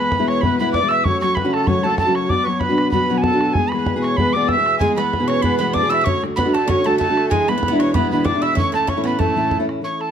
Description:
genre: celtic folk, Celtic reel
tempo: 191 BPM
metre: 4/4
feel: swing 54% on 8ths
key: unclear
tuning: A4 = 439 Hz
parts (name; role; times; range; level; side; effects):
- mellow tin whistle; melody; 0.0-10.1 s; G#5 to E6; -20 LUFS; right 2 dB; plate reverb
- accordion; second line; 0.0-10.1 s; G#4 to E5; -26 LUFS; left 3 dB; light tremolo tuning
- fingerpicked steel-string acoustic guitar; accompaniment; 0.0-10.1 s; E2 to G#4; -20 LUFS; left 1 dB; none
- bodhran; percussion; 0.1-9.8 s; none; -24 LUFS; equal; none
- Irish bouzouki; second line; 4.8-9.6 s; G#3 to E4; -25 LUFS; right 4 dB; none
room: light reverb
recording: close, detailed microphones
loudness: -16 LUFS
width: side -8 dB against mid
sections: 0.0-9.8 A section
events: none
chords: 0.0 E; 1.0 F#m; 2.3 Bm; 3.6 E; 6.1 D; 7.3 E7; 8.6 A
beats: 0.11 0.42 0.73 | 1.05 1.36 1.68 1.99 | 2.30 2.61 2.93 3.24 | 3.56 3.87 4.18 4.50 | 4.81 5.12 5.44 5.75 | 6.06 6.38 6.69 7.00 | 7.32 7.63 7.94 8.26 | 8.57 8.88 9.20 9.51 | 9.83

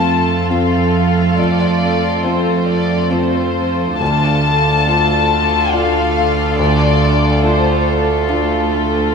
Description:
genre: cinematic, emotional film score for orchestra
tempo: 70 BPM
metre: 3/4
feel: rubato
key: unclear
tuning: A4 = 440 Hz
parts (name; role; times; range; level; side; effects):
- dark studio violin section; melody; 0.0-7.9 s; C5 to A5; -18 LUFS; left 5 dB; none
- rich studio violin section; second line; 0.0-9.1 s; F4 to A4; -20 LUFS; left 1 dB; none
- clear grand piano; accompaniment; 0.0-9.1 s; D2 to A4; -19 LUFS; left 1 dB; none
- rich studio viola section; accompaniment; 0.0-9.1 s; A3 to D4; -22 LUFS; right 2 dB; none
- warm studio cello section; bass; 0.0-9.1 s; D2 to F2; -19 LUFS; right 4 dB; none
room: wet scoring stage reverb, RT60 1.5 s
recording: minimal, uncompressed stereo recording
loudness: -12 LUFS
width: side -5 dB against mid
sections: 0.0-9.1 A section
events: none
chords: 0.0 F; 4.0 Dm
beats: 0.50 | 1.38 2.25 3.10 | 4.01 4.88 5.74 | 6.58 7.44 8.30

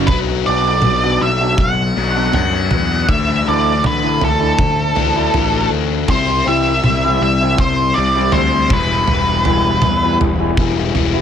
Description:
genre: quiet-loud alternative rock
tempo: 80 BPM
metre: 4/4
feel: straight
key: unclear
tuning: A4 = 444 Hz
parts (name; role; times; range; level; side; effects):
- raw garage guitar; riff; 0.0-11.2 s; B2 to E4; -20 LUFS; left 10 dB; overdrive, phaser
- fuzz picked electric bass; bass; 0.0-11.2 s; E1 to D3; -20 LUFS; right 1 dB; overdrive
- octave-fuzz lead guitar; melody; 0.1-10.2 s; A4 to F#5; -17 LUFS; right 1 dB; distortion
- loose indie drum kit; drums; 0.1-11.1 s; kick drum, toms; -20 LUFS; right 1 dB; none
- electric guitar through a small old amp; arpeggios; 0.3-11.2 s; D3 to F#4; -22 LUFS; right 1 dB; tape echo
room: light reverb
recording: none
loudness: -13 LUFS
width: side -8 dB against mid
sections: 0.1-11.2 A section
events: half time 0.1-11.2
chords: 0.1 Bm; 3.1 Dsus2; 6.1 C; 8.7 Em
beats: | 0.09 0.84 1.59 2.34 | 3.09 3.84 4.59 5.34 | 6.09 6.83 7.58 8.33 | 9.08 9.83 10.58

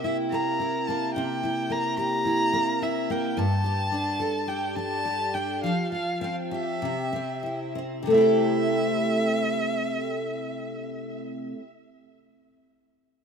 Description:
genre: pop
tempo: 92-108 BPM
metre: 4/4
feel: straight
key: C mixolydian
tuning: A4 = 440 Hz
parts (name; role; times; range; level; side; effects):
- warm violin; melody; 0.0-11.2 s; E5 to Bb5; -29 LUFS; equal; digital delay
- picked steel-string acoustic guitar; accompaniment; 0.0-11.7 s; G2 to A4; -26 LUFS; equal; double-tracked left and right
room: light reverb, studio reverb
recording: rough home demo mix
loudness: -24 LUFS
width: side -6 dB against mid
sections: 0.0-8.1 A section; 8.1-10.7 B section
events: slowing down 3.4-8.1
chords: 0.0 C7; 3.4 Gsus2; 5.6 Fsus2; 6.8 C; 8.1 C6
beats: 0.04 0.59 | 1.15 1.70 2.26 2.81 | 3.37 3.92 4.48 5.05 | 5.63 6.22 6.82 7.44 | 8.08 8.73 9.38 10.03

